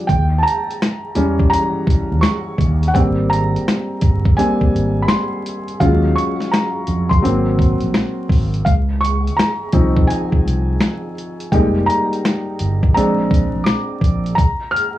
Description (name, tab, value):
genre	lo-fi hip hop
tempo	84 BPM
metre	4/4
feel	swing 64% on 16ths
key	Eb major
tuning	A4 = 440 Hz
part	felt-muted upright piano	accompaniment	0.0-15.0 s	Fb3 to F6	-18 LUFS	equal	cassette tape, low-pass filter
part	fretless electric bass	bass	0.1-14.3 s	F1 to F2	-18 LUFS	equal	none
part	dusty soul sampler-style drum kit	drums	0.1-15.0 s	finger snaps, hi-hat, kick drum, snare drum	-17 LUFS	equal	none
room	light reverb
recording	worn, warbling old tape, cassette tape, vinyl crackle, warbly pitch drift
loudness	-14 LUFS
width	side -14 dB against mid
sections	0.0-15.0 A section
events	felt piano solo 0.0-15.0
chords	0.1 Eb7b9; 2.9 Abmaj9; 5.8 Ebm11; 7.2 Ab7; 8.7 Dbmaj9; 11.5 Fm11; 12.9 Bb9; 14.4 Ebsus2 (rootless)